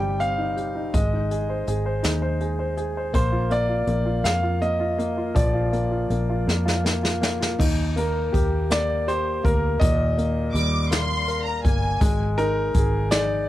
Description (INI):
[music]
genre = six-eight pop ballad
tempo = 54 BPM (dotted quarters)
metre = 6/8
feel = straight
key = Eb major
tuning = A4 = 440 Hz
[part]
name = warm concert grand piano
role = melody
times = 0.0-13.5 s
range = Bb4 to G5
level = -26 LUFS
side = equal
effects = cassette tape, plate reverb
[part]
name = clear baby grand piano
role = accompaniment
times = 0.0-13.5 s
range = Bb2 to C5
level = -27 LUFS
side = left 1 dB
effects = cassette tape, plate reverb
[part]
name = vintage muted fingered electric bass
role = bass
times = 0.0-13.5 s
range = G1 to F2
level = -25 LUFS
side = equal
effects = none
[part]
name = jazz brush drum kit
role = drums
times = 0.2-13.3 s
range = crash cymbal, hi-hat, kick drum, snare drum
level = -24 LUFS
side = equal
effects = cassette tape
[part]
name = dark studio violin section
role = second line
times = 10.5-12.2 s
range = Ab5 to D6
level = -27 LUFS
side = equal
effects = cassette tape, plate reverb
[sound]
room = light reverb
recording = home recording on cassette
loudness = -20 LUFS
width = side -14 dB against mid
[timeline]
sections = 0.0-7.6 A section; 7.6-13.5 B section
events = drum fill 6.5-7.6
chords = 0.0 Cm; 0.9 Ab; 3.1 Bb; 7.6 Eb; 12.0 Absus2